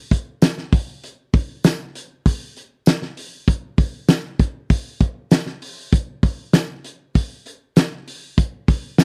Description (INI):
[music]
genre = pop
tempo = 98 BPM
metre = 4/4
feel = straight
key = none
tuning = none
[part]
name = loose indie drum kit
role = drums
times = 0.1-9.0 s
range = hi-hat, kick drum, snare drum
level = -18 LUFS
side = equal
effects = none
[part]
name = tambourine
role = percussion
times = 0.4-9.0 s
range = none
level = -37 LUFS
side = equal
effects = none
[sound]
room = little or no reverb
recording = dry, close 1970s-style studio recording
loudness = -20 LUFS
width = mono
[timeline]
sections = 0.0-9.0 A section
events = none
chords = none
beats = 0.42 | 1.03 1.64 2.25 2.87 | 3.48 4.09 4.70 5.32 | 5.93 6.54 7.15 7.76 | 8.38 8.99